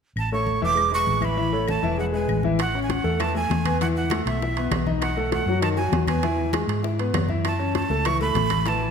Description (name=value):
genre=latin, salsa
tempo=198 BPM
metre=4/4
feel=straight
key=A major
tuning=A4 = 442 Hz
part: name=breathy bright jazz flute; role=melody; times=0.2-8.9 s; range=E5 to D6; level=-26 LUFS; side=right 5 dB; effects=none
part: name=hollow-body short-scale fingered electric bass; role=bass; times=0.2-8.9 s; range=E1 to G#2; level=-27 LUFS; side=equal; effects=none
part: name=claves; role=percussion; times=0.2-8.7 s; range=none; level=-39 LUFS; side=left 6 dB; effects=none
part: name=congas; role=percussion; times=0.2-8.9 s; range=none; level=-31 LUFS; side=left 2 dB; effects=none
part: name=clear grand piano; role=accompaniment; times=0.3-8.9 s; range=D#3 to E5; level=-26 LUFS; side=left 3 dB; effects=none
part: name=bongos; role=percussion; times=2.6-8.9 s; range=none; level=-32 LUFS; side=left 6 dB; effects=none
part: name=timbales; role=percussion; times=2.6-8.8 s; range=none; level=-32 LUFS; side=right 9 dB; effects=none
room=wet recital hall reverb, RT60 1.8 s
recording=none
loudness=-21 LUFS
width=side -6 dB against mid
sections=0.2-2.6 A section; 2.6-8.9 B section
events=none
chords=0.2 A; 0.8 E; 1.4 A; 2.0 E; 2.6 A69; 3.8 Esus24; 5.0 B7; 6.2 E; 7.4 F#m7